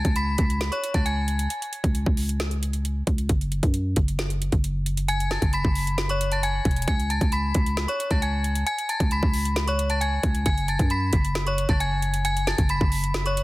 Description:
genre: hip hop, trap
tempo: 134 BPM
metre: 4/4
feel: half-time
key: unclear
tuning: A4 = 443 Hz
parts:
  - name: metallic FM bell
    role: melody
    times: 0.0-1.5, 5.1-13.4 s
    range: C#5 to B6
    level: -27 LUFS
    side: left 1 dB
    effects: chorus, tape echo
  - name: growling 808-style bass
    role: bass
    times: 0.0-13.4 s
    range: E1 to F#2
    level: -25 LUFS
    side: equal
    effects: none
  - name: trap drum kit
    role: drums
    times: 0.0-13.4 s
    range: hi-hat, kick drum, snare drum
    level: -25 LUFS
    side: equal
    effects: none
room: digital ambience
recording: dense, heavily limited modern master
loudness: -22 LUFS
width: side -19 dB against mid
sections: 0.0-13.4 A section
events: none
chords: 0.0 C#5; 3.3 N.C.; 6.9 C#5; 10.5 F#m

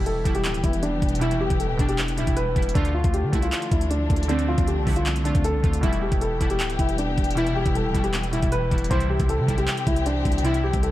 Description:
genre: hip hop, trap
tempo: 156 BPM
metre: 4/4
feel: half-time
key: E phrygian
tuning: A4 = 439 Hz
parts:
  - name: dark baby grand piano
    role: melody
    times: 0.0-10.9 s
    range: D4 to C5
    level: -27 LUFS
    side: left 2 dB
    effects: ping-pong delay
  - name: glassy digital keys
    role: accompaniment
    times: 0.0-10.9 s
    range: B2 to F4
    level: -28 LUFS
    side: right 2 dB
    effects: chorus
  - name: warm symphonic string section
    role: sustained chords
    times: 0.0-10.9 s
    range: D3 to G4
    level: -31 LUFS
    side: left 3 dB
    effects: none
  - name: long sustained 808-style bass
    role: bass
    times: 0.0-10.9 s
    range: D1 to D3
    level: -26 LUFS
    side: equal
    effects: none
  - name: trap drum kit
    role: drums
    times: 0.1-10.9 s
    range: handclaps, hi-hat, kick drum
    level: -25 LUFS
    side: equal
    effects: overdrive
room: digital ambience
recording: vinyl crackle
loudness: -20 LUFS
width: side -14 dB against mid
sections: 0.0-10.9 A section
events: none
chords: 0.0 Em; 2.8 Dm; 5.8 Em; 8.9 C

